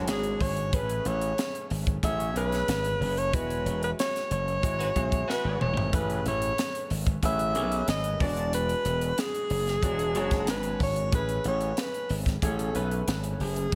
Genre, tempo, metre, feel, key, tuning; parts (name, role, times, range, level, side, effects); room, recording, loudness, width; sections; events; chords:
polished 1980s jazz-funk pop; 92 BPM; 4/4; straight; A4 = 436 Hz
clear concert grand piano; accompaniment; 0.0-13.8 s; G#3 to G#5; -38 LUFS; equal; analog chorus
gritty slap bass; bass; 0.0-13.8 s; E1 to B1; -32 LUFS; equal; overdrive
breathy alto saxophone; melody; 0.1-13.8 s; G#4 to E5; -32 LUFS; equal
crisp fusion drum kit; drums; 0.1-13.8 s; hi-hat, kick drum, snare drum, toms; -33 LUFS; equal; gated reverb
warm horn section; second line; 4.8-5.7 s; G#3 to B4; -39 LUFS; equal
light reverb, small room ambience; -28 LUFS; mono
0.0-13.8 A section
band accent 3.3-5.9; drum fill 5.3-5.9
0.0 E13 (rootless); 0.7 Amaj9; 3.3 E69; 5.9 Amaj9; 8.2 E13; 11.1 Amaj9